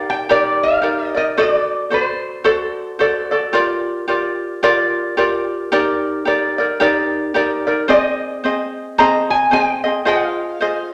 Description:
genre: Hawaiian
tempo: 110 BPM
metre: 4/4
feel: swing 59% on 8ths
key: Eb major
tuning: A4 = 439 Hz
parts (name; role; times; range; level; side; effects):
- lap resonator guitar; melody; 0.0-3.3, 7.9-10.9 s; C5 to Bb5; -19 LUFS; equal; none
- ukulele; accompaniment; 0.0-10.9 s; C4 to Eb5; -19 LUFS; equal; none
room: wet large studio reverb, RT60 1.2 s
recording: none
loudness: -17 LUFS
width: mono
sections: 0.0-10.9 A section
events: none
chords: 0.0 Ebmaj7; 1.4 D7; 3.5 Gm7; 5.7 Ebmaj7; 7.9 Abmaj7/C; 10.1 Fm7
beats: 0.29 0.83 | 1.37 1.92 2.46 3.00 | 3.54 4.08 4.63 5.17 | 5.71 6.26 6.80 7.34 | 7.89 8.43 8.97 9.52 | 10.06 10.60

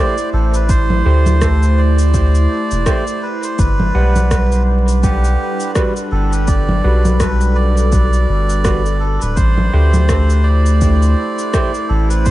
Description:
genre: ambient dub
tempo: 83 BPM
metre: 4/4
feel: swing 58% on 16ths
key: A dorian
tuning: A4 = 439 Hz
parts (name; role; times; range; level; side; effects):
- melodica; melody; 0.0-12.3 s; G4 to D5; -22 LUFS; right 2 dB; dub echo
- warbly tape-like pad; sustained chords; 0.0-12.3 s; G3 to B5; -24 LUFS; equal; chorus, built-in reverb, phaser
- overdriven tine electric piano; stabs; 0.0-11.7 s; G3 to F#5; -22 LUFS; right 2 dB; dub echo
- electronic cabasa, congas and rim click; drums; 0.2-12.3 s; none; -23 LUFS; equal; dub echo
- soft dub sub bass; bass; 0.3-12.3 s; D1 to D2; -13 LUFS; equal; none
- electronic kick drum; drums; 0.7-12.3 s; none; -17 LUFS; equal; overdrive
room: light reverb, digital ambience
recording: vinyl crackle, nothing above 10.9 kHz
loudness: -12 LUFS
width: side -16 dB against mid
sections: 0.0-12.3 A section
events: none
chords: 0.0 Am7; 3.6 Gmaj7; 9.4 Am7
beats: | 0.70 1.42 2.14 2.87 | 3.59 4.31 5.03 5.76 | 6.48 7.20 7.92 8.65 | 9.37 10.09 10.82 11.54 | 12.26

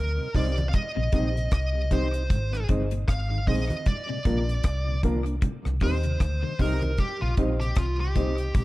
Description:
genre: roots reggae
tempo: 77 BPM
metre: 4/4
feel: swing 58% on 16ths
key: C minor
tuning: A4 = 440 Hz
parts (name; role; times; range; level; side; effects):
- high-gain lead guitar; melody; 0.0-8.6 s; F4 to F5; -32 LUFS; equal; distortion, tape echo
- vintage muted fingered electric bass; bass; 0.0-8.6 s; G1 to Eb2; -26 LUFS; equal; none
- mellow tonewheel organ; accompaniment; 0.2-8.5 s; Ab2 to Eb4; -37 LUFS; equal; stopped rotary speaker, tape echo
- mellow electric guitar; accompaniment; 0.3-8.3 s; Bb3 to C5; -34 LUFS; right 3 dB; tape echo
- dark upright piano; stabs; 0.3-8.3 s; D4 to C5; -35 LUFS; left 3 dB; none
- deep reggae drum kit; drums; 0.3-8.6 s; hi-hat, kick drum, rim click; -26 LUFS; equal; none
- congas; percussion; 0.4-8.6 s; none; -36 LUFS; right 3 dB; none
- clean electric guitar; arpeggios; 1.0-8.6 s; Bb2 to Eb3; -37 LUFS; left 7 dB; ensemble chorus
room: studio reverb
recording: dark, warm production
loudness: -23 LUFS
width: side -18 dB against mid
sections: 0.0-5.4 A section; 5.4-8.6 B section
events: lead electric guitar solo 5.4-8.6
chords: 0.0 Cm; 2.3 Ab; 3.9 Bb; 5.4 Cm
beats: 0.74 1.52 | 2.30 3.08 3.86 4.64 | 5.43 6.21 6.99 7.77 | 8.55

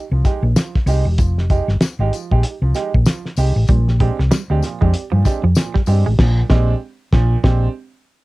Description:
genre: funk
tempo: 96 BPM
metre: 4/4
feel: swing 60% on 16ths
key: unclear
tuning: A4 = 440 Hz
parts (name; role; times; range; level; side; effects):
- warm upright piano; stabs; 0.1-7.7 s; Bb2 to G4; -25 LUFS; right 6 dB; none
- hollow-body short-scale fingered electric bass; bass; 0.1-7.7 s; E1 to G2; -15 LUFS; equal; none
- cloth-damped thuddy drum kit; drums; 0.2-7.6 s; crash cymbal, hi-hat, kick drum, snare drum; -17 LUFS; equal; cassette tape
- tambourine; percussion; 0.2-6.0 s; none; -34 LUFS; left 10 dB; none
- semi-hollow electric guitar; riff; 3.7-6.1 s; F3 to Ab3; -25 LUFS; right 6 dB; none
room: light reverb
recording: home recording on cassette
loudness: -14 LUFS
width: side -20 dB against mid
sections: 0.0-8.2 A section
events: band accent 6.2-8.2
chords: 0.0 Fm9; 3.7 Bb13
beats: 0.56 | 1.19 1.81 2.44 3.06 | 3.69 4.31 4.94 5.56 | 6.19 6.81 7.44

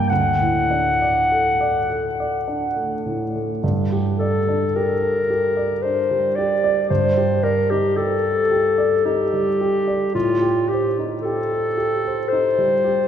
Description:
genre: classical, romantic duo for clarinet and grand piano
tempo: 50-57 BPM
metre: 3/4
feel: rubato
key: G minor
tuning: A4 = 442 Hz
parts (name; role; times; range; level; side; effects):
- dark clarinet; melody; 0.0-13.1 s; F4 to F#5; -19 LUFS; left 2 dB; none
- warm grand piano; accompaniment; 0.0-13.1 s; D2 to Eb5; -22 LUFS; right 2 dB; none
room: wet cathedral reverb, RT60 5.0 s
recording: recorded in a church or concert hall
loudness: -17 LUFS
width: side -9 dB against mid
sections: 0.0-3.6 A section; 3.6-13.1 B section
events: none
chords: 0.1 D; 3.6 Gm; 6.9 Ebmaj7/G; 10.1 Am7b5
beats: | 0.10 1.30 2.46 | 3.62 4.76 5.83 | 6.90 7.97 9.05 | 10.14 11.22 12.29

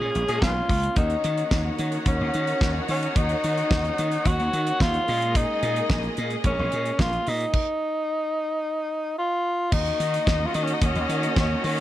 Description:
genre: disco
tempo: 110 BPM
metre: 4/4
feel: straight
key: Eb minor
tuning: A4 = 439 Hz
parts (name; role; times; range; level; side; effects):
- breathy tenor saxophone; melody; 0.0-11.8 s; Db4 to Ab4; -26 LUFS; left 1 dB; none
- dark studio string section; second line; 0.0-11.8 s; Bb3 to Ab5; -31 LUFS; equal; none
- clear symphonic string section; sustained chords; 0.0-11.8 s; Eb3 to Gb4; -34 LUFS; left 1 dB; none
- slap bass; bass; 0.0-11.8 s; Bb1 to Eb3; -27 LUFS; equal; none
- damped 70s drum kit; drums; 0.2-11.8 s; crash cymbal, hi-hat, kick drum, snare drum; -25 LUFS; equal; gated reverb
- warm horn section; stabs; 0.3-0.5 s; F3 to Ab4; -31 LUFS; left 4 dB; none
room: little or no reverb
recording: none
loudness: -22 LUFS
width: side -13 dB against mid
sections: 0.0-9.7 A section; 9.7-11.8 A section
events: band accent 0.0-1.0; stop 7.5-9.7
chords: 0.0 Bbm7; 1.0 Ebm7; 5.1 Bbm7; 7.5 N.C.; 9.7 Ebm7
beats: 0.42 | 0.97 1.52 2.06 2.61 | 3.16 3.71 4.25 4.80 | 5.35 5.90 6.44 6.99 | 7.54 8.09 8.63 9.18 | 9.73 10.27 10.82 11.37

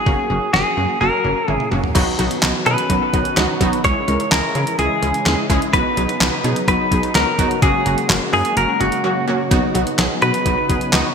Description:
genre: synth-pop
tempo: 127 BPM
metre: 4/4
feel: straight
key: B major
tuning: A4 = 440 Hz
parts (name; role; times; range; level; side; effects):
- direct-recorded clean electric guitar; melody; 0.0-11.1 s; F#4 to C#5; -20 LUFS; left 1 dB; wide subtle chorus, digital delay
- wide unison pluck; accompaniment; 0.1-11.1 s; F#3 to A#4; -21 LUFS; right 1 dB; lush chorus
- solid FM bass; bass; 0.1-11.0 s; F#1 to C#3; -22 LUFS; equal; none
- detuned 8-bit digital drum machine; drums; 0.1-11.0 s; crash cymbal, handclaps, hi-hat, kick drum, snare drum, toms; -20 LUFS; equal; gated reverb
- brassy analog pad; sustained chords; 2.0-11.1 s; C#3 to F#4; -26 LUFS; left 1 dB; chorus, tremolo
room: moderate plate reverb, RT60 2.5 s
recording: bright 1980s-style digital production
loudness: -15 LUFS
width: side -6 dB against mid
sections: 0.0-2.0 A section; 2.0-11.1 B section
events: drum fill 1.5-2.0; silent gap 9.0-9.5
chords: 0.1 F#add9; 2.0 Badd9; 3.8 C#m; 5.7 Badd9; 7.6 F#add9; 9.5 Badd9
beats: | 0.07 0.54 1.01 1.48 | 1.96 2.43 2.90 3.37 | 3.85 4.32 4.79 5.26 | 5.74 6.21 6.68 7.15 | 7.62 8.10 8.57 9.04 | 9.51 9.99 10.46 10.93

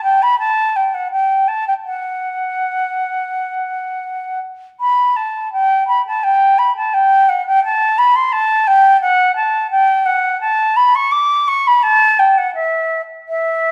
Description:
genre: classical, baroque-style fantasia for unaccompanied flute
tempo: 80-87 BPM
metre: 4/4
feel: rubato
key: unclear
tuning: A4 = 436 Hz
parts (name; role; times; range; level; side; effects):
- mellow concert flute; solo; 0.0-13.7 s; E5 to D6; -15 LUFS; equal; none
room: wet recital hall reverb, RT60 1.5 s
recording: none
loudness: -15 LUFS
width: mono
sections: 0.0-13.7 A section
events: none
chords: none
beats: 0.39 1.12 | 1.85 2.59 3.33 4.07 | 4.80 5.52 6.22 6.93 | 7.63 8.32 9.01 9.71 | 10.41 11.11 11.82 12.54 | 13.28

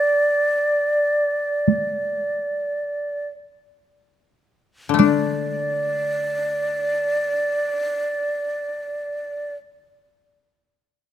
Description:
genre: japanese traditional, Japanese chamber music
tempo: free time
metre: none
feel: none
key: unclear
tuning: A4 = 436 Hz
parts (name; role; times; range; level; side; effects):
- breathy shakuhachi; melody; 0.0-9.5 s; D5; -21 LUFS; right 1 dB; none
- taiko ensemble; percussion; 1.7-5.8 s; none; -19 LUFS; equal; none
- koto; accompaniment; 4.9-9.6 s; D3 to D4; -21 LUFS; left 11 dB; none
room: moderate recital hall reverb, RT60 1.6 s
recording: close, detailed microphones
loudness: -20 LUFS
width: side -10 dB against mid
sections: 0.0-5.0 A section; 5.0-11.1 B section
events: slowing down 0.0-5.0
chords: none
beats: free time

